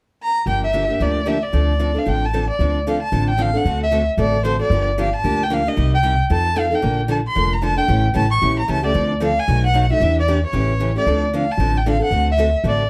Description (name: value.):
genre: acoustic string swing (jazz manouche).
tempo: 227 BPM.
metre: 4/4.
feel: swing 58% on 8ths.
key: D minor.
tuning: A4 = 435 Hz.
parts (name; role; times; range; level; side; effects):
rich violin; melody; 0.2-12.9 s; C5 to C#6; -22 LUFS; equal; plate reverb.
picked steel-string acoustic guitar; accompaniment; 0.5-12.8 s; B2 to A4; -25 LUFS; equal; none.
upright bass; bass; 0.5-12.9 s; F1 to F2; -22 LUFS; equal; none.
room: light reverb.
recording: none.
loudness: -18 LUFS.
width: mono.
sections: 0.5-2.6 A section; 2.6-11.1 B section; 11.1-12.9 B section.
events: none.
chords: 0.5 Gm7; 1.5 Dm7; 3.7 D7; 4.7 Gm7; 5.8 Cm7; 6.3 F7; 6.8 Bbmaj9; 7.9 A7; 8.9 Dm7; 9.5 B7; 10.0 Em7b5; 10.5 A7; 11.1 Dm7; 12.1 D7.